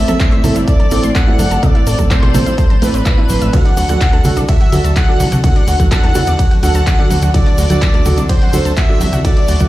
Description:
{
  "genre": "progressive house",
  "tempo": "126 BPM",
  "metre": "4/4",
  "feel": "straight",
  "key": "unclear",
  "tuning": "A4 = 439 Hz",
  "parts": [
    { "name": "wide unison lead", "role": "melody", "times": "0.0-9.7 s", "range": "B4 to F#5", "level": "-22 LUFS", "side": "equal", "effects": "sidechain pumping, digital delay" },
    { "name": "airy dreamy lead", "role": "second line", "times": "0.0-9.7 s", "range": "B4 to F#5", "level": "-27 LUFS", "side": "right 1 dB", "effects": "chorus, sidechain pumping, ping-pong delay" },
    { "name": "muted studio string section", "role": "sustained chords", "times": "0.0-9.7 s", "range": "D3 to D5", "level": "-23 LUFS", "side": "left 1 dB", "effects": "vintage 12-bit sampler grit, sidechain pumping" },
    { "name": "fat analog bass", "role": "bass", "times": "0.0-9.7 s", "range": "G1 to E2", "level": "-15 LUFS", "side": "equal", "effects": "sidechain pumping" },
    { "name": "analog pluck", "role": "arpeggios", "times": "0.1-9.7 s", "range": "F#3 to E6", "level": "-24 LUFS", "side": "equal", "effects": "chorus, sidechain pumping, ping-pong delay" },
    { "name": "felt-muted upright piano", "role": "stabs", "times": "0.1-9.7 s", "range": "A2 to B4", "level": "-20 LUFS", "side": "right 2 dB", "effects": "sidechain pumping, ping-pong delay" },
    { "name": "big-room dance drum kit", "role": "drums", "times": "0.1-9.7 s", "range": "handclaps, hi-hat, ride cymbal", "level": "-24 LUFS", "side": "left 1 dB", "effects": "small room ambience" },
    { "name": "congas and bongos", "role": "percussion", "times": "0.1-9.7 s", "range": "none", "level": "-23 LUFS", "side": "right 1 dB", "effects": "none" },
    { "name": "egg shaker", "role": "percussion", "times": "0.1-9.7 s", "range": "none", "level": "-33 LUFS", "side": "right 1 dB", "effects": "none" },
    { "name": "electronic kick drum", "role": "drums", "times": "0.2-9.7 s", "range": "none", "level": "-12 LUFS", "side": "equal", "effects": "small room ambience" }
  ],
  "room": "small room ambience",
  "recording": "played on a big sound system in a bare room, large studio reverb",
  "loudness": "-10 LUFS",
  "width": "side -16 dB against mid",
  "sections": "0.0-9.7 A section",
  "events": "none",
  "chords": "0.0 Am; 3.5 D"
}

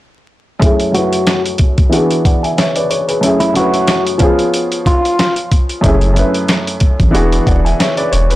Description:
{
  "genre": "hip hop, boom-bap hip-hop",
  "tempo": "92 BPM",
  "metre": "4/4",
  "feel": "swing 55% on 16ths",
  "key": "F# minor",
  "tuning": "A4 = 440 Hz",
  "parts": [
    { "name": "clear upright piano", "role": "accompaniment", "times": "0.6-8.4 s", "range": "F#2 to G#5", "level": "-14 LUFS", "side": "equal", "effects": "high-pass filter, low-pass filter, plate reverb" },
    { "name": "dusty soul sampler-style drum kit", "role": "drums", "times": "0.6-8.4 s", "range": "hi-hat, kick drum, snare drum", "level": "-14 LUFS", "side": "equal", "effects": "overdrive" },
    { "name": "clean electric guitar", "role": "melody", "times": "0.9-5.3 s", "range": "E4 to F#4", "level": "-17 LUFS", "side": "left 1 dB", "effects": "spring reverb, high-pass filter, low-pass filter, plate reverb, tape echo" },
    { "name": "soft dub sub bass", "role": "bass", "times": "5.8-8.4 s", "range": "E1 to A1", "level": "-13 LUFS", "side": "equal", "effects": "transformer saturation" }
  ],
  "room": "light reverb",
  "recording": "blown-out, overdriven recording, vinyl crackle, overdrive",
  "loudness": "-11 LUFS",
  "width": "side -16 dB against mid",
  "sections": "0.6-8.4 A section",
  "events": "filter sweep 0.6-8.4",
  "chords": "0.6 F#m9; 1.9 E7; 3.2 F#m9; 4.2 C#7/E#; 5.8 F#m9; 7.1 E7"
}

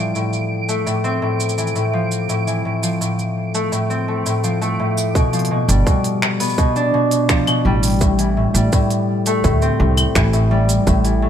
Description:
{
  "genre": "folktronica",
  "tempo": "84 BPM",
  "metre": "4/4",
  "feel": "straight",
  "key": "unclear",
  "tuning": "A4 = 439 Hz",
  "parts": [
    { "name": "concert harp", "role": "arpeggios", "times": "0.0-11.3 s", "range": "A2 to D4", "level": "-17 LUFS", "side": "left 1 dB", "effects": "ping-pong delay" },
    { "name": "flickering grainy texture", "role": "texture", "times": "0.0-5.2 s", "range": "D7", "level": "-31 LUFS", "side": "right 4 dB", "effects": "built-in reverb" },
    { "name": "organic electronic drum kit", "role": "drums", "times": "0.2-11.2 s", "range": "cabasa, claves, finger snaps, hi-hat", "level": "-24 LUFS", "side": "right 1 dB", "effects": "low-pass filter on perc, low-pass filter on hats, low-pass filter on snare, low-pass filter on room" },
    { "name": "electronic kick drum", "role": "drums", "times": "5.2-11.0 s", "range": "none", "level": "-17 LUFS", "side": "right 1 dB", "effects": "none" },
    { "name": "upright bass", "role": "bass", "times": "5.7-11.3 s", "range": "G1 to D2", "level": "-17 LUFS", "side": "right 1 dB", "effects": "none" }
  ],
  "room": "light reverb",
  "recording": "none",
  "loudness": "-15 LUFS",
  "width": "side -9 dB against mid",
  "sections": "0.0-5.2 A section; 5.2-11.3 B section",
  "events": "none",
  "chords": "0.0 Fmaj7/A; 5.2 G7; 8.0 Am7"
}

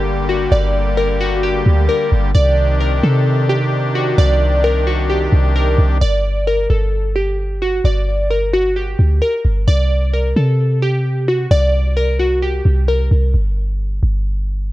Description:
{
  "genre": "hip hop, trap",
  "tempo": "131 BPM",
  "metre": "4/4",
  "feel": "half-time",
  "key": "G harmonic minor",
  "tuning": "A4 = 439 Hz",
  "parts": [
    { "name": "glassy digital keys", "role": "melody", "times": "0.0-13.1 s", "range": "F#4 to D5", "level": "-18 LUFS", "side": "equal", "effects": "chorus" },
    { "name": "pipe organ, strings celeste", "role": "sustained chords", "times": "0.0-6.0 s", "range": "C3 to G4", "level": "-21 LUFS", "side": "left 2 dB", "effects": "none" },
    { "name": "clean 808-style bass", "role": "bass", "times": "0.0-14.7 s", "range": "G1 to C3", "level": "-15 LUFS", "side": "equal", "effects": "none" }
  ],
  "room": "small room ambience",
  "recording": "dry, gritty hardware recording",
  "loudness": "-13 LUFS",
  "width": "side -16 dB against mid",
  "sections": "0.0-6.0 A section; 6.0-14.7 B section",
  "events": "break 13.3-14.7",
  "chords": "0.0 Gm; 2.3 Cmadd9; 6.0 G5; 9.7 Csus2; 13.3 G5"
}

